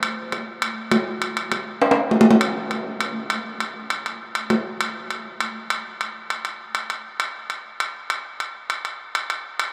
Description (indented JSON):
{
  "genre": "jazz",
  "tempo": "201 BPM",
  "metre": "4/4",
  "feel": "straight",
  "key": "none",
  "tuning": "none",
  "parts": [
    { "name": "timbales", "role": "percussion", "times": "0.0-9.7 s", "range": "none", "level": "-24 LUFS", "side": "equal", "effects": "none" }
  ],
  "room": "wet cathedral reverb, RT60 5.0 s",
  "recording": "in a vast, echoing space",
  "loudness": "-24 LUFS",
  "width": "mono",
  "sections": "0.0-2.4 A section; 2.4-9.7 B section",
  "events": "drum fill 1.8-2.4",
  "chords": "none"
}